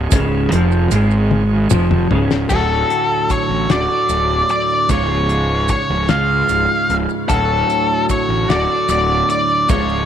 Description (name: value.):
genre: psychedelic rock.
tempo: 50 BPM (dotted quarters).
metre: 6/8.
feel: straight.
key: unclear.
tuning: A4 = 440 Hz.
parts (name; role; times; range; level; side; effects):
octave-fuzz lead guitar; melody; 0.0-10.1 s; A4 to E#5; -17 LUFS; left 1 dB; distortion, tape echo.
bright tonewheel organ; sustained chords; 0.0-2.5 s; E#3 to C#5; -30 LUFS; right 13 dB; slow rotary speaker, overdrive.
direct-recorded clean electric guitar; riff; 0.0-10.1 s; C#2 to F#4; -19 LUFS; right 1 dB; rotary speaker, double-tracked left and right.
fuzz fingered electric bass; bass; 0.0-10.1 s; C#1 to C#2; -19 LUFS; equal; overdrive.
cloth-damped thuddy drum kit; drums; 0.1-9.9 s; crash cymbal, hi-hat, kick drum, snare drum, toms; -20 LUFS; left 2 dB; none.
maracas; percussion; 0.1-10.0 s; none; -30 LUFS; right 19 dB; none.
room: light reverb, small room ambience.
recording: 1960s-style stereo.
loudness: -14 LUFS.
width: side -9 dB against mid.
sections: 0.0-2.5 A section; 2.5-10.1 B section.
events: drum fill 1.3-2.5.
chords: 0.0 C#; 2.5 D; 4.9 C#; 7.3 D.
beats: | 0.12 1.31 | 2.50 3.70 | 4.89 6.09 | 7.29 8.49 | 9.69.